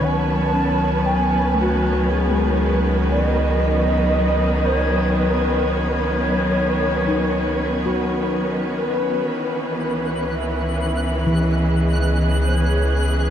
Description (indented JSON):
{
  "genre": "ambient",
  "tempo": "58 BPM",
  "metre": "3/4",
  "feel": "straight",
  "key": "C# minor",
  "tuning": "A4 = 439 Hz",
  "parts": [
    { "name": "mellow hollow shakuhachi", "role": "melody", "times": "0.0-13.2 s", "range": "F#4 to A5", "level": "-24 LUFS", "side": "equal", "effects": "tape echo" },
    { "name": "warm studio string section", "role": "sustained chords", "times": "0.0-13.3 s", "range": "D#3 to B4", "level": "-21 LUFS", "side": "equal", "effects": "none" },
    { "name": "handpan", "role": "arpeggios", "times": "0.0-13.3 s", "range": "D#3 to F#4", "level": "-26 LUFS", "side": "left 1 dB", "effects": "tape echo" },
    { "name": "round analog bass", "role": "bass", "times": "0.0-13.3 s", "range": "C#2", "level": "-23 LUFS", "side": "equal", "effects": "none" },
    { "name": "twinkling granular texture", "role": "texture", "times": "9.8-13.3 s", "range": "F#6", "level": "-30 LUFS", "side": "right 2 dB", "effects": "built-in reverb" }
  ],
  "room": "wet shimmer reverb, RT60 8.4 s",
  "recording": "dark, warm production",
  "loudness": "-17 LUFS",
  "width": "side -9 dB against mid",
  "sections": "0.0-9.3 A section; 9.3-13.3 B section",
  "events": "fade-in on shakuhachi 9.3-13.3",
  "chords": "0.0 Badd9/C#; 9.3 C#m7"
}